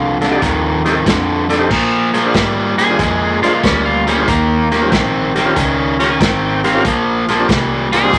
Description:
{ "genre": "electric blues shuffle", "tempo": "93 BPM", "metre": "4/4", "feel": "swing 68% on 8ths", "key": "Bb mixolydian", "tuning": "A4 = 440 Hz", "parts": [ { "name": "electric guitar at the edge of break-up", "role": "melody", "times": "0.0-8.2 s", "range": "Bb3 to F5", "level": "-21 LUFS", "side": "equal", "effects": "none" }, { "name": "crunchy overdriven guitar", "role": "riff", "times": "0.0-8.2 s", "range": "F2 to Db4", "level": "-17 LUFS", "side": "equal", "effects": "none" }, { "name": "vintage muted fingered electric bass", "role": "bass", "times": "0.0-8.2 s", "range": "Ab1 to Bb2", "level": "-27 LUFS", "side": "equal", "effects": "none" }, { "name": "tonewheel organ", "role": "accompaniment", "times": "0.2-8.1 s", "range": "C4 to Bb5", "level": "-22 LUFS", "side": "equal", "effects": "slow rotary speaker, overdrive" }, { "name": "crunchy breakbeat drum kit", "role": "drums", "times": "0.2-8.2 s", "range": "crash cymbal, hi-hat, kick drum, snare drum", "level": "-21 LUFS", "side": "equal", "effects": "none" } ], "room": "moderate large studio reverb, RT60 1.4 s", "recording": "none", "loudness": "-14 LUFS", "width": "mono", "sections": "0.0-1.7 A section; 1.7-8.2 B section", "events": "clean electric guitar solo 1.7-8.2; tonewheel organ fill 5.6-6.8", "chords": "0.0 F7; 1.7 Bb7; 4.3 Eb7; 6.8 Bb7" }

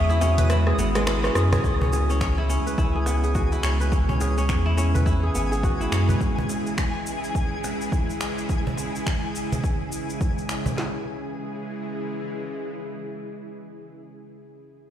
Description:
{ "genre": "organic downtempo", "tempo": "105 BPM", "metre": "4/4", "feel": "swing 60% on 16ths", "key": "C# minor", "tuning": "A4 = 439 Hz", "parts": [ { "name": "bright bass bansuri", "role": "melody", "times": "0.0-1.1 s", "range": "E5", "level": "-29 LUFS", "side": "left 3 dB", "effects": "digital delay" }, { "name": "bowed-like drone", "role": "sustained chords", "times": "0.0-13.8 s", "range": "C#3 to G#4", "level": "-30 LUFS", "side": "right 1 dB", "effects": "built-in reverb, sidechain pumping" }, { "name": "kora", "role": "arpeggios", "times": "0.0-7.4 s", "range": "G#3 to C#5", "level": "-28 LUFS", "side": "equal", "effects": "digital delay" }, { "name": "warm sub bass", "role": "bass", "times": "0.0-6.1 s", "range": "G#1 to F#2", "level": "-22 LUFS", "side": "equal", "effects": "none" }, { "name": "twinkling granular texture", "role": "texture", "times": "0.0-10.8 s", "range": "G#5 to D#6", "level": "-36 LUFS", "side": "left 2 dB", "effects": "built-in reverb" }, { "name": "deep house drum kit", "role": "drums", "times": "0.1-10.8 s", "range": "finger snaps, hi-hat, rim click, shaker", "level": "-31 LUFS", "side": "right 1 dB", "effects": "none" }, { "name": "cajon", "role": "percussion", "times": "0.1-10.8 s", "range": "none", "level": "-29 LUFS", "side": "right 1 dB", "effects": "none" }, { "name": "deep house drum kit", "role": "drums", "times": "1.6-10.9 s", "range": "handclaps, kick drum, snare drum", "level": "-25 LUFS", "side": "equal", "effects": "none" } ], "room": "moderate lush hall reverb, RT60 2.4 s", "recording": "played on a big sound system in a bare room, stone room reverb", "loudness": "-22 LUFS", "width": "side -10 dB against mid", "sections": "0.0-1.6 A section; 1.6-10.8 B section; 10.8-13.1 C section", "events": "kick drops out 0.5-1.6; drum fill 0.5-1.6; band accent 1.5", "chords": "0.0 C#m" }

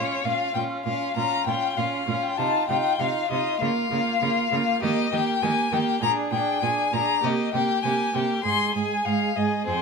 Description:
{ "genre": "quick classical-period movement for string quartet", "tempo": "99 BPM", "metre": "4/4", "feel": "rubato", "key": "unclear", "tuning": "A4 = 440 Hz", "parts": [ { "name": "rich violin", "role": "melody", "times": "0.0-9.8 s", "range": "C5 to C6", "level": "-25 LUFS", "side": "left 8 dB", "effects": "none" }, { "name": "rich violin", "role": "second line", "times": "0.0-9.8 s", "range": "F4 to Ab4", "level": "-30 LUFS", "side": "equal", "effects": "none" }, { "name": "dark viola", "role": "accompaniment", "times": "0.0-9.8 s", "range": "Ab3 to Eb4", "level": "-28 LUFS", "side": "right 6 dB", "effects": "none" }, { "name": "clear cello", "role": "bass", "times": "0.0-9.8 s", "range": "F2 to Eb3", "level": "-31 LUFS", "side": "right 7 dB", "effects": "none" } ], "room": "light reverb", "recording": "minimal, uncompressed stereo recording", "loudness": "-22 LUFS", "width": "side -4 dB against mid", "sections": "0.0-9.8 A section", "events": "none", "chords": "0.0 Bbm; 2.4 F5/C; 3.6 Bbm/Db; 4.8 Eb; 6.0 Bb7; 7.2 C5; 8.4 Ab6" }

